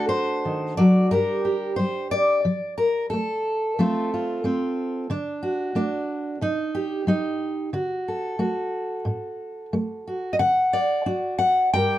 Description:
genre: folk, solo fingerstyle acoustic guitar.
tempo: 90 BPM.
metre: 4/4.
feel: straight.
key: unclear.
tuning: A4 = 440 Hz.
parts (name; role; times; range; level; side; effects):
fingerpicked steel-string acoustic guitar; solo; 0.0-12.0 s; G2 to G5; -22 LUFS; equal; none.
room: moderate studio ambience, RT60 0.5 s.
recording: dark, warm production.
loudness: -22 LUFS.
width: side -13 dB against mid.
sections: 0.0-12.0 A section.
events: none.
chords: 0.0 D; 1.1 Gm; 2.5 Fadd11; 3.8 F; 5.1 D; 6.4 Cm; 7.7 D.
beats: 0.45 1.12 1.79 | 2.45 3.11 3.77 4.43 | 5.09 5.75 6.41 7.07 | 7.72 8.39 9.06 9.72 | 10.39 11.06 11.73.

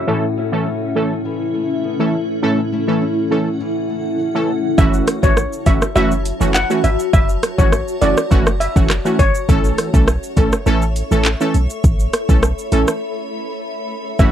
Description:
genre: dancehall.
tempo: 102 BPM.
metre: 4/4.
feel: straight.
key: unclear.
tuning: A4 = 440 Hz.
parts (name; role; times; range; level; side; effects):
steel pan; melody; 0.0, 4.8-9.3, 14.2-14.3 s; C#5 to F#5; -21 LUFS; left 2 dB; low-pass filter, tape echo.
granular cloud pad; sustained chords; 0.0-14.3 s; C#4 to C#6; -24 LUFS; right 1 dB; built-in reverb, sidechain pumping, low-pass filter.
nylon-string guitar; arpeggios; 0.0-5.3, 14.2-14.3 s; F#2 to E4; -22 LUFS; left 7 dB; low-pass filter.
synth brass stab; accompaniment; 0.1-14.3 s; E3 to A4; -18 LUFS; right 2 dB; chorus, low-pass filter.
clean 808-style bass; bass; 4.8-14.3 s; F#1 to B1; -19 LUFS; equal; none.
afro-pop drum kit; drums; 4.8-14.3 s; handclaps, hi-hat, kick drum, rim click, shaker; -15 LUFS; equal; none.
room: light reverb.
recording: none.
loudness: -14 LUFS.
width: side -10 dB against mid.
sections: 0.0-4.8 A section; 4.8-14.3 B section.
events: break 13.0-14.2.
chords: 0.1 A; 4.8 F#m7; 9.5 A.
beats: | 0.07 0.66 1.25 1.84 | 2.43 3.02 3.60 4.19 | 4.78 5.37 5.96 6.55 | 7.13 7.72 8.31 8.90 | 9.49 10.07 10.66 11.25 | 11.84 12.43 13.02 13.60 | 14.19.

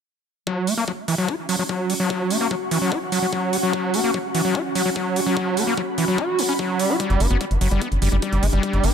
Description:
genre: psychedelic trance.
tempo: 147 BPM.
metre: 4/4.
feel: straight.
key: unclear.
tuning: A4 = 440 Hz.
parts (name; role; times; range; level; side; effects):
screaming distorted acid line; riff; 0.5-8.9 s; E3 to F#4; -22 LUFS; equal; distortion, chorus, auto-pan, sidechain pumping, dub echo.
electronic kick drum; drums; 0.5-8.7 s; none; -31 LUFS; equal; overdrive, high-pass filter on kick, high-pass filter on room.
ethereal airy pad; texture; 1.5-8.9 s; C#4 to D6; -26 LUFS; left 1 dB; ensemble chorus, built-in reverb, sidechain pumping.
electronic hi-hat; drums; 0.7-8.9 s; none; -29 LUFS; right 1 dB; overdrive.
tight sequencer bass; bass; 7.1-8.9 s; G1; -19 LUFS; equal; none.
room: light reverb.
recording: none.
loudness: -19 LUFS.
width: side -8 dB against mid.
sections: 0.5-8.9 A section.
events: none.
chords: 0.5 F#5; 7.0 G5.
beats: | 0.47 0.88 1.28 1.69 | 2.10 2.51 2.92 3.33 | 3.73 4.14 4.55 4.96 | 5.37 5.78 6.18 6.59 | 7.00 7.41 7.82 8.22 | 8.63.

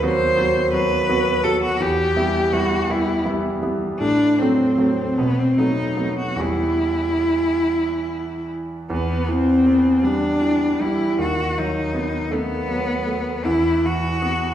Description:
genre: classical, romantic duo for cello and grand piano.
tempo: 46-57 BPM (dotted quarters).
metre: 6/8.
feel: rubato.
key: E minor.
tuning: A4 = 441 Hz.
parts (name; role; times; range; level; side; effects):
bright cello; melody; 0.0-14.5 s; B3 to C5; -20 LUFS; equal; none.
clear concert grand piano; accompaniment; 0.0-14.5 s; D#2 to F#4; -22 LUFS; right 1 dB; none.
room: wet recital hall reverb, RT60 1.8 s.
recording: heard from further back in the room.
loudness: -18 LUFS.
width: side -10 dB against mid.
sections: 0.0-8.9 A section; 8.9-14.5 B section.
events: none.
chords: 0.0 B/D#; 1.8 Em; 4.0 F#dim/A; 5.2 B7; 6.4 Em; 11.2 B7/D#; 13.5 E5.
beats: 0.74 | 1.80 2.89 | 4.00 5.18 | 6.40 7.67 | 8.90 10.04 | 11.19 12.32 | 13.45.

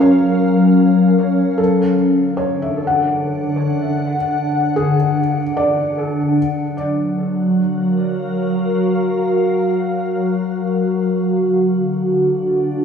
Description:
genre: ambient.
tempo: free time.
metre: none.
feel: none.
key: unclear.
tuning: A4 = 440 Hz.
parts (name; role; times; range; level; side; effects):
glassy FM pad; sustained chords; 0.0-12.8 s; D3 to F#5; -15 LUFS; left 1 dB; ensemble chorus, built-in reverb, phaser.
felt-muted upright piano; arpeggios; 0.0-6.7 s; G#4 to F#5; -22 LUFS; right 1 dB; analog delay.
room: wet plate reverb, RT60 2.5 s.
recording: dreamy mix soaked in reverb, small room reverb.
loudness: -15 LUFS.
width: side -7 dB against mid.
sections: 0.0-6.4 A section; 6.4-12.8 A section.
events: fade-in on felt piano 0.0-6.4.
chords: 0.0 F#maj7; 1.6 Dmaj7; 6.4 F#maj7; 11.2 D.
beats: free time.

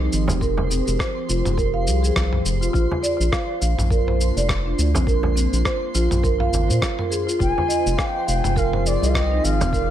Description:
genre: organic downtempo.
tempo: 103 BPM.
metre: 4/4.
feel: swing 57% on 16ths.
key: F dorian.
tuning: A4 = 436 Hz.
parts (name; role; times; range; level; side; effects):
warbly tape-like pad; sustained chords; 0.0-9.9 s; F3 to Ab4; -29 LUFS; right 3 dB; chorus, built-in reverb, phaser, sidechain pumping.
marimba with medium mallets; arpeggios; 0.0-9.9 s; C4 to F5; -25 LUFS; right 2 dB; tape echo.
round analog bass; bass; 0.0-9.9 s; F1 to Bb2; -21 LUFS; equal; none.
twinkling granular texture; texture; 0.0-9.9 s; C5; -34 LUFS; right 4 dB; built-in reverb.
dusty soul sampler-style drum kit; drums; 0.1-9.9 s; rim click, shaker, toms; -27 LUFS; equal; overdrive, studio reverb.
frame drum; percussion; 0.3-9.7 s; none; -27 LUFS; right 1 dB; none.
electronic kick drum; drums; 0.4-9.9 s; none; -25 LUFS; equal; overdrive, studio reverb.
bansuri; melody; 7.4-9.9 s; D5 to Ab5; -24 LUFS; left 3 dB; dub echo.
room: light reverb, small room ambience.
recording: echo-heavy mix.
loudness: -18 LUFS.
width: side -11 dB against mid.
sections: 0.0-9.9 A section.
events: none.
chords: 0.0 Fmadd9; 2.7 Bb; 7.4 Fmadd9.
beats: | 0.41 0.99 1.58 2.16 | 2.74 3.33 3.91 4.49 | 5.07 5.66 6.24 6.82 | 7.40 7.99 8.57 9.15 | 9.73.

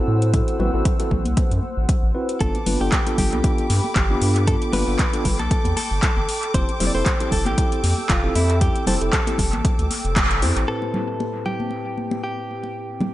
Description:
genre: deep house.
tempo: 116 BPM.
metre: 4/4.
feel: swing 55% on 16ths.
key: A minor.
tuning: A4 = 439 Hz.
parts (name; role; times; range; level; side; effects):
warm analog pad; sustained chords; 0.0-13.1 s; C4 to E6; -32 LUFS; equal; chorus, vintage 12-bit sampler grit, sidechain pumping.
mellow tine electric piano; stabs; 0.0-13.1 s; A2 to C5; -27 LUFS; equal; fast stereo tremolo, vintage 12-bit sampler grit, sidechain pumping, low-pass filter, dub echo.
round analog bass; bass; 0.1-10.6 s; F1 to A2; -22 LUFS; equal; none.
deep house drum kit; drums; 0.2-10.7 s; handclaps, hi-hat; -26 LUFS; equal; overdrive, low-pass filter on hats, low-pass filter on snare, dub echo.
electronic kick drum; drums; 0.3-10.3 s; none; -21 LUFS; equal; overdrive.
congas; percussion; 0.6-13.1 s; none; -29 LUFS; left 1 dB; dub echo.
direct-recorded clean electric guitar; melody; 2.4-13.1 s; E4 to D5; -28 LUFS; equal; vintage 12-bit sampler grit, dub echo.
clear symphonic violin section; texture; 2.4-10.7 s; D6; -34 LUFS; equal; none.
room: light reverb.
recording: echo-heavy mix, nothing above 10.7 kHz.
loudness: -18 LUFS.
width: side -15 dB against mid.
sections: 0.0-10.7 A section; 10.7-13.1 B section.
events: band accent 10.2.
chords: 0.0 Am69; 2.4 G9; 6.5 Fmaj7; 10.7 Am7.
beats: | 0.34 0.85 1.37 1.89 | 2.41 2.92 3.44 3.96 | 4.47 4.99 5.51 6.03 | 6.54 7.06 7.58 8.10 | 8.61 9.13 9.65 10.16 | 10.68 11.20 11.72 12.23 | 12.75.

